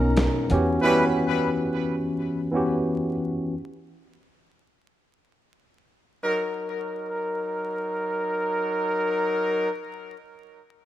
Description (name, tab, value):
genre	hip hop, boom-bap hip-hop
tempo	free time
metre	none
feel	none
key	unclear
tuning	A4 = 439 Hz
part	tine electric piano	accompaniment	0.0-3.6 s	B2 to A#4	-23 LUFS	equal	medium stereo tremolo, cassette tape
part	warm studio string section	sustained chords	0.0-0.5 s	B3 to A#5	-44 LUFS	equal	none
part	upright bass	bass	0.0-0.8 s	B1 to E2	-24 LUFS	equal	none
part	dusty soul sampler-style drum kit	drums	0.2-0.7 s	hi-hat, snare drum	-27 LUFS	equal	none
part	mellow trumpet section	stabs	0.8-1.0, 6.2-9.7 s	F#3 to B4	-25 LUFS	equal	ping-pong delay
room	moderate lush hall reverb, RT60 1.7 s, small room reverb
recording	rough home demo mix, vinyl crackle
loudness	-23 LUFS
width	side -13 dB against mid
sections	0.0-6.2 A section; 6.2-8.9 B section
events	none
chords	0.0 Bmaj7; 0.5 Em6; 6.2 F#6